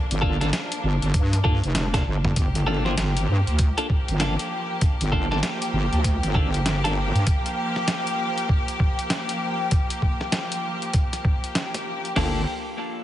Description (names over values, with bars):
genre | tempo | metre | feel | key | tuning
glitch hop | 98 BPM | 4/4 | swing 62% on 16ths | G minor | A4 = 439 Hz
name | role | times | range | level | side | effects
bright symphonic string section | sustained chords | 0.0-12.4 s | F3 to G4 | -29 LUFS | left 1 dB | sidechain pumping
wobble bass | bass | 0.1-7.2, 12.2-12.4 s | F1 to G2 | -23 LUFS | equal | chorus, tube saturation
boom bap sampler-style drum kit | drums | 0.1-12.1 s | hi-hat, snare drum, toms | -28 LUFS | equal | studio ambience
clean electric guitar | stabs | 0.2-6.9, 12.2-12.4 s | Bb3 to C5 | -29 LUFS | left 1 dB | wide subtle chorus, sidechain pumping, tape echo
boom bap sampler-style drum kit | drums | 0.2-12.3 s | crash cymbal, kick drum, snare drum, toms | -23 LUFS | equal | studio ambience
room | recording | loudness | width
light reverb | heavily compressed radio sound, nothing above 10.8 kHz | -21 LUFS | side -13 dB against mid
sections
0.0-2.4 A section; 2.4-12.2 B section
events
drop 0.0-2.4; drum fill 1.8-2.4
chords
0.0 Gm7